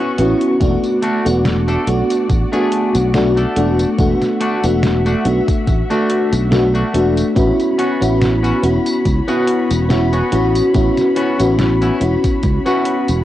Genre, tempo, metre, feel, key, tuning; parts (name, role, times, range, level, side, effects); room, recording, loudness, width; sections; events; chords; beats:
vaporwave; 71 BPM; 4/4; swing 54% on 16ths; A major; A4 = 440 Hz
muted studio string section; sustained chords; 0.0-13.2 s; F#4 to C#6; -28 LUFS; left 1 dB; cassette tape
semi-hollow electric guitar; riff; 0.0-13.1 s; A3 to A4; -22 LUFS; left 1 dB; wide subtle chorus, cassette tape, analog delay
FM electric piano with soft pad layer; accompaniment; 0.2-13.2 s; A3 to F#4; -16 LUFS; equal; lush chorus, cassette tape, analog delay
fretless electric bass; bass; 0.2-13.2 s; E1 to C#2; -18 LUFS; equal
detuned 8-bit digital drum machine; drums; 0.2-13.2 s; hi-hat, snare drum, tambourine; -23 LUFS; equal; cassette tape
electronic kick drum; drums; 0.6-12.6 s; -17 LUFS; equal; cassette tape
light reverb; home recording on cassette; -13 LUFS; side -13 dB against mid
0.0-13.2 A section
0.0 A69; 0.6 E9sus4; 7.4 A69
| 0.60 1.45 2.29 3.14 | 3.98 4.83 5.67 6.52 | 7.37 8.21 9.05 9.90 | 10.75 11.59 12.44